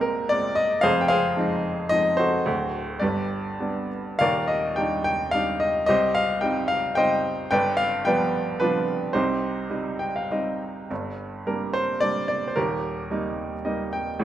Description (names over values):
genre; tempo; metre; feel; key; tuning
classical, lyrical solo piano; 93-115 BPM; 3/4; rubato; C minor, G minor from 10.9 s; A4 = 440 Hz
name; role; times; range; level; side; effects
bright upright piano; solo; 0.0-14.2 s; D1 to G5; -22 LUFS; equal; none
room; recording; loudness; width
moderate recital hall reverb, RT60 1.3 s; none; -22 LUFS; side -12 dB against mid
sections
0.0-10.9 A section; 10.9-14.2 B section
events
upright piano fill 9.7-10.9, 13.4-14.2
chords
0.0 Abadd9/C; 0.8 Fm7; 2.5 D7; 3.0 G; 4.2 Ebmaj7; 5.9 Cm; 7.5 G7; 9.1 Cm; 10.9 Gm; 12.6 Eb